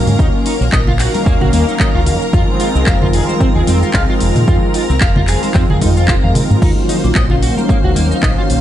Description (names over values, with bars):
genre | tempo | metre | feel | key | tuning
nu-disco, nu disco | 112 BPM | 4/4 | swing 56% on 16ths | Eb dorian | A4 = 440 Hz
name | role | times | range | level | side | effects
warm analog pad | accompaniment | 0.0-8.6 s | Eb3 to F5 | -18 LUFS | equal | chorus, tape echo
string machine, full ensemble | sustained chords | 0.0-8.6 s | Bb4 to C6 | -23 LUFS | left 1 dB | ensemble chorus, sidechain pumping
fingered electric bass with an envelope filter | bass | 0.1-8.6 s | F1 to Bb2 | -15 LUFS | equal | tube saturation, sidechain pumping
house drum kit | drums | 0.1-8.6 s | crash cymbal, handclaps, hi-hat, shaker, toms | -22 LUFS | equal | studio reverb
congas | percussion | 0.1-8.1 s | none | -22 LUFS | left 1 dB | none
electric guitar at the edge of break-up | riff | 0.2-8.4 s | Bb3 to F5 | -22 LUFS | right 1 dB | analog chorus, tape echo
electronic kick drum | drums | 0.2-8.3 s | none | -15 LUFS | equal | studio reverb
room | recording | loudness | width
little or no reverb | nothing above 10.7 kHz | -11 LUFS | side -12 dB against mid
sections
0.0-8.6 A section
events
drum fill 6.2-6.6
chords
0.0 Ebm9; 2.1 Fm7; 6.6 Ebm9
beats
| 0.19 0.73 1.26 1.80 | 2.34 2.87 3.41 3.94 | 4.48 5.01 5.55 6.09 | 6.62 7.16 7.69 8.23